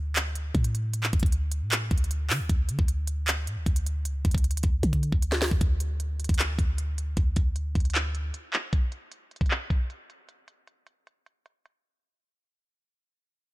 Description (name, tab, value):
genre	hip hop, trap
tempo	154 BPM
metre	4/4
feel	half-time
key	unclear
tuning	A4 = 440 Hz
part	clean 808-style bass	bass	0.0-8.3 s	C#2 to D3	-28 LUFS	equal	none
part	trap drum kit	drums	0.2-11.7 s	handclaps, hi-hat, kick drum, snare drum	-25 LUFS	equal	none
room	little or no reverb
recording	low-pass filter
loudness	-24 LUFS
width	side -19 dB against mid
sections	0.0-5.6 A section; 5.6-11.8 B section; 11.8-13.5 C section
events	drum fill 4.8-5.6; break 11.1-11.8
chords	none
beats	0.16 0.55 | 0.94 1.33 1.72 2.10 | 2.49 2.88 3.27 3.66 | 4.05 4.44 4.83 5.22 | 5.61 6.00 6.39 6.78 | 7.17 7.56 7.95 8.34 | 8.73 9.12 9.51 9.90 | 10.29 10.68 11.07 11.46